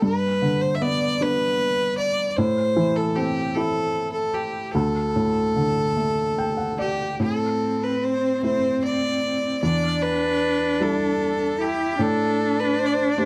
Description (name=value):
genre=celtic folk, Celtic slow air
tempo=51 BPM (dotted quarters)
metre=6/8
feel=rubato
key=A minor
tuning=A4 = 440 Hz
part: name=rich fiddle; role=melody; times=0.0-13.3 s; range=G4 to E5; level=-26 LUFS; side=equal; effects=none
part: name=felt-muted upright piano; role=accompaniment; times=0.0-13.3 s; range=D2 to G5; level=-27 LUFS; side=equal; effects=none
part: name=rich cello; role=second line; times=7.2-13.3 s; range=C4 to E4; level=-27 LUFS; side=equal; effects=none
room=little or no reverb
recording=dry, close 1970s-style studio recording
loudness=-23 LUFS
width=mono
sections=0.0-7.2 A section; 7.2-13.3 B section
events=felt piano fill 6.0-7.2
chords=0.0 G; 2.4 Am; 4.7 D5; 7.2 Am; 9.6 Em7; 12.0 D5/A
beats=| 0.03 1.21 | 2.38 3.55 | 4.74 5.96 | 7.21 8.44 | 9.63 10.81 | 11.99 13.18